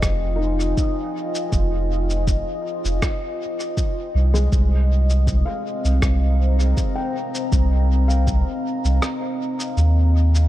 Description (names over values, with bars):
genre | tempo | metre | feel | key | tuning
ambient dub | 80 BPM | 4/4 | swing 54% on 16ths | F minor | A4 = 438 Hz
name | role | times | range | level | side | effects
deep dark ambient pad | sustained chords | 0.0-10.5 s | C4 to Bb5 | -26 LUFS | left 1 dB | chorus, built-in reverb
felt-muted upright piano | arpeggios | 0.0-10.5 s | Ab3 to Eb6 | -31 LUFS | left 2 dB | low-pass filter, dub echo
soft dub sub bass | bass | 0.0-10.5 s | F1 to Eb2 | -17 LUFS | equal | none
electronic kick drum | drums | 0.0-8.4 s | none | -22 LUFS | equal | none
electronic rim click and shaker | drums | 0.0-10.5 s | none | -30 LUFS | equal | dub echo
room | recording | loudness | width
light reverb | none | -18 LUFS | side -14 dB against mid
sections
0.0-10.5 A section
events
filter sweep on felt piano 0.0-10.5; kick drops out 9.0-10.5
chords
0.0 Fm7; 4.5 Cm7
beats
0.02 0.77 | 1.52 2.27 3.02 3.77 | 4.52 5.27 6.02 6.77 | 7.52 8.27 9.02 9.77